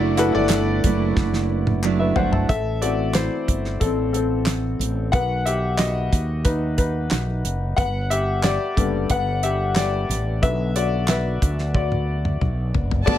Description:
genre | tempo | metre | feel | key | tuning
piano-driven pop | 91 BPM | 4/4 | straight | unclear | A4 = 437 Hz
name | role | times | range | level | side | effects
clear grand piano | accompaniment | 0.0-13.2 s | D3 to A5 | -23 LUFS | left 4 dB | none
fingerpicked steel-string acoustic guitar | riff | 0.0-2.5, 13.1-13.2 s | F#3 to F#4 | -22 LUFS | right 8 dB | none
fretless electric bass | bass | 0.0-13.2 s | F#1 to D#2 | -24 LUFS | equal | none
damped 70s drum kit | drums | 0.2-13.2 s | crash cymbal, handclaps, hi-hat, kick drum, snare drum, toms | -22 LUFS | right 1 dB | none
group handclap | percussion | 0.2-2.0 s | none | -31 LUFS | left 3 dB | none
dark symphonic violin section | second line | 13.1-13.2 s | A4 to A5 | -25 LUFS | left 1 dB | none
room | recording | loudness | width
light reverb | none | -19 LUFS | side -11 dB against mid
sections
0.0-2.5 A section; 2.5-13.1 B section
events
drum fill 1.2-2.5, 11.7-13.1; grand piano solo 2.5-13.1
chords
0.0 Dadd9/F#; 2.5 Am; 5.1 B; 7.8 G; 10.4 Bm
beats
0.51 1.17 1.83 | 2.49 3.15 3.81 4.48 | 5.14 5.80 6.46 7.12 | 7.78 8.44 9.11 9.77 | 10.43 11.09 11.75 12.41 | 13.07

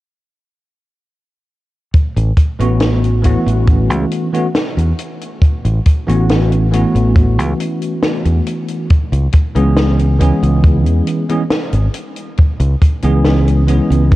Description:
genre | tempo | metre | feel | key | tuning
vaporwave | 69 BPM | 4/4 | straight | A major | A4 = 436 Hz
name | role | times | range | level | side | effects
fingered electric bass | bass | 1.9-14.2 s | G#1 to E2 | -13 LUFS | equal | tube saturation
compact cocktail drum kit | drums | 1.9-14.2 s | hi-hat, snare drum | -21 LUFS | left 1 dB | studio reverb, gated reverb
kick drum | drums | 1.9-14.2 s | none | -10 LUFS | equal | studio reverb
bell-like tine electric piano | accompaniment | 2.6-14.2 s | E3 to G#4 | -17 LUFS | equal | medium stereo tremolo, lush chorus, tape echo
room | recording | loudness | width
studio ambience | cassette tape | -11 LUFS | side -17 dB against mid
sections
1.9-14.2 A section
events
none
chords
1.9 A69; 8.9 C#m7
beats
| 1.94 2.81 3.68 4.55 | 5.42 6.29 7.16 8.03 | 8.90 9.77 10.64 11.51 | 12.38 13.25 14.12

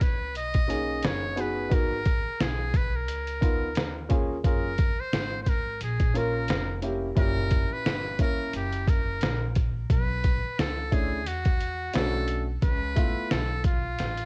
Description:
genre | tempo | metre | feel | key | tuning
hip hop, jazz-hop | 88 BPM | 4/4 | swing 58% on 16ths | unclear | A4 = 439 Hz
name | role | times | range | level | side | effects
trumpet with metal mute | melody | 0.0-14.3 s | E#4 to D#5 | -35 LUFS | equal | cassette tape, tape echo
upright bass | bass | 0.0-14.3 s | E#1 to E2 | -35 LUFS | equal | tube saturation
trip hop sampler-style drum kit | drums | 0.0-14.3 s | hi-hat, kick drum, snare drum | -28 LUFS | equal | cassette tape
warm upright piano | accompaniment | 0.7-13.4 s | A#2 to A#4 | -34 LUFS | equal | cassette tape
room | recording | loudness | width
light reverb | home recording on cassette, nothing above 10.5 kHz | -27 LUFS | mono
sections
0.0-14.3 A section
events
drum fill 14.0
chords
0.0 Bmaj13; 1.7 G#m7; 3.1 C#13; 4.4 F#maj9; 7.2 F#7b9; 9.9 Bm11; 12.6 C#7alt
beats
0.35 1.03 | 1.71 2.40 3.08 3.76 | 4.44 5.12 5.80 6.49 | 7.17 7.85 8.53 9.21 | 9.90 10.58 11.26 11.94 | 12.62 13.30 13.99

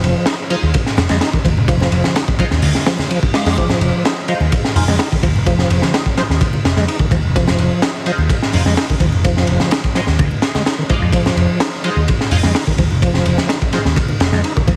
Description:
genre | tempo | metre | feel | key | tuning
breakbeat, breaks | 127 BPM | 4/4 | straight | unclear | A4 = 440 Hz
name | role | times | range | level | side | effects
bright tonewheel organ | riff | 0.0-14.7 s | Eb3 to Eb4 | -22 LUFS | equal | chorus vibrato, fast rotary speaker, tube saturation, vintage 12-bit sampler grit, digital delay
overdriven picked electric bass | bass | 0.0-14.8 s | F1 to F2 | -19 LUFS | equal | none
crunchy breakbeat drum kit | drums | 0.0-14.8 s | hi-hat, kick drum, ride cymbal, snare drum | -19 LUFS | equal | none
band-passed chord stab | stabs | 0.5-13.8 s | Ab3 to D5 | -28 LUFS | equal | phaser, ensemble chorus, digital delay
bongos and congas | percussion | 0.6-14.8 s | none | -27 LUFS | equal | none
reverse cymbal | sound effects | 3.2-3.6 s | none | -36 LUFS | equal | none
room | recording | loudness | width
light reverb, small room ambience | heavily compressed radio sound, vinyl crackle | -16 LUFS | mono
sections
0.0-14.8 A section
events
reverse cymbal 3.2-3.6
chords
0.0 Fm7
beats
0.27 0.74 1.21 | 1.68 2.16 2.63 3.10 | 3.57 4.05 4.52 4.99 | 5.46 5.94 6.41 6.88 | 7.35 7.83 8.30 8.77 | 9.24 9.72 10.19 10.66 | 11.13 11.61 12.08 12.55 | 13.02 13.49 13.97 14.44

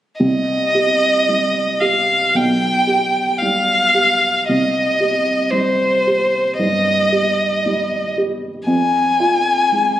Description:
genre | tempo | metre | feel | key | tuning
classical, romantic duo for violin and grand piano | 57 BPM | 4/4 | rubato | C minor | A4 = 440 Hz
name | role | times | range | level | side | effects
rich violin | melody | 0.2-10.0 s | C5 to Ab5 | -15 LUFS | left 1 dB | none
dark grand piano | accompaniment | 0.2-10.0 s | B1 to G4 | -20 LUFS | right 2 dB | none
room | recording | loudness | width
moderate recital hall reverb, RT60 1.6 s | recorded on a phone in the room, club reverb, compression | -14 LUFS | side -12 dB against mid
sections
0.2-10.0 A section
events
none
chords
0.2 Cm; 2.3 G/B; 4.5 Cm; 8.7 Fm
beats
| 0.20 1.28 2.35 3.41 | 4.47 5.52 6.59 7.65 | 8.69 9.73

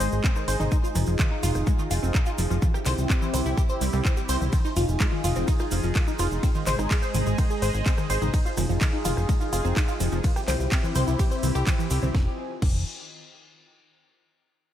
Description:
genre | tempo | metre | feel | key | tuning
melodic techno | 126 BPM | 4/4 | straight | F minor | A4 = 440 Hz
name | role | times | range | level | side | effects
sweeping resonant pad | sustained chords | 0.0-12.4 s | Ab3 to Ab5 | -31 LUFS | equal | chorus, sidechain pumping
tight sequenced synth | arpeggios | 0.0-12.8 s | Eb3 to C5 | -30 LUFS | equal | chorus, sidechain pumping, diffuse ambient delay
plucky analog bass | bass | 0.0-12.8 s | F1 to C2 | -26 LUFS | equal | sidechain pumping
house drum kit | drums | 0.0-12.7 s | crash cymbal, handclaps, hi-hat, ride cymbal, rim click, snare drum, toms | -32 LUFS | equal | none
cabasa | percussion | 0.0-12.1 s | none | -39 LUFS | right 2 dB | none
electronic kick drum | drums | 0.2-12.7 s | none | -23 LUFS | equal | none
room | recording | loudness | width
light reverb | none | -22 LUFS | side -11 dB against mid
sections
0.0-12.1 A section; 12.1-14.1 B section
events
drop 0.0-12.1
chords
0.0 Ab; 0.7 Fm7; 2.6 C; 4.5 Fm7; 6.4 Ab; 8.3 Fm7; 10.2 C; 12.1 Fm7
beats
0.24 | 0.72 1.19 1.67 2.15 | 2.62 3.10 3.58 4.05 | 4.53 5.00 5.48 5.96 | 6.43 6.91 7.38 7.86 | 8.34 8.81 9.29 9.77 | 10.24 10.72 11.19 11.67 | 12.15 12.62

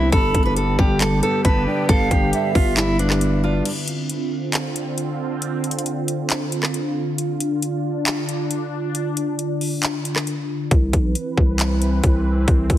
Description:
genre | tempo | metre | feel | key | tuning
hip hop, trap | 136 BPM | 4/4 | half-time | D dorian | A4 = 441 Hz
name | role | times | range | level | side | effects
fingerpicked steel-string acoustic guitar | melody | 0.0-3.6 s | D4 to B4 | -23 LUFS | equal | ping-pong delay
felt-muted upright piano | accompaniment | 0.0-3.7 s | G2 to D4 | -24 LUFS | right 1 dB | none
sweeping resonant pad | sustained chords | 0.0-12.8 s | D3 to B4 | -25 LUFS | equal | chorus
growling 808-style bass | bass | 0.0-3.6, 10.7-12.8 s | G1 to C2 | -20 LUFS | equal | none
breathy mellow jazz flute | second line | 0.1-2.7 s | E5 to B5 | -28 LUFS | right 3 dB | ping-pong delay
trap drum kit | drums | 0.1-12.8 s | crash cymbal, handclaps, hi-hat, kick drum, rim click | -21 LUFS | equal | none
room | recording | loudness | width
light reverb, small room ambience | heavily compressed radio sound | -18 LUFS | side -12 dB against mid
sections
0.0-3.7 A section; 3.7-12.8 B section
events
break 3.7-10.7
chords
0.1 G; 3.7 Dm7; 10.7 Cmaj7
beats
| 0.12 0.57 1.01 1.45 | 1.89 2.33 2.77 3.21 | 3.65 4.09 4.54 4.98 | 5.42 5.86 6.30 6.74 | 7.18 7.62 8.07 8.51 | 8.95 9.39 9.83 10.27 | 10.71 11.15 11.60 12.04 | 12.48

